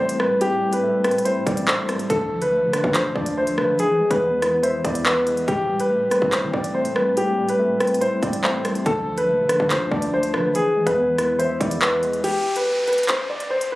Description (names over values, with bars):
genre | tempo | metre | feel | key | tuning
hip hop, drill | 142 BPM | 4/4 | half-time | A minor | A4 = 440 Hz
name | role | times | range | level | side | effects
dark baby grand piano | melody | 0.0-13.8 s | G4 to D5 | -20 LUFS | equal | low-pass filter
tine electric piano | accompaniment | 0.0-12.3 s | A2 to E5 | -26 LUFS | equal | medium stereo tremolo, low-pass filter
hard-hitting 808-style bass | bass | 0.0-12.2 s | A1 to E3 | -32 LUFS | equal | none
drill drum kit | drums | 0.1-13.7 s | crash cymbal, handclaps, hi-hat, kick drum, rim click | -25 LUFS | equal | none
downlifter | sound effects | 12.2-13.8 s | none | -30 LUFS | right 1 dB | none
room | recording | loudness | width
light reverb, digital ambience | recorded on a phone in the room, club reverb, compression | -18 LUFS | side -18 dB against mid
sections
0.0-12.2 A section; 12.2-13.8 B section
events
kick muted 12.2-13.8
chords
0.0 Am7; 2.1 Dm; 3.8 E; 5.5 Am7; 8.9 Dm; 10.6 E; 12.2 N.C.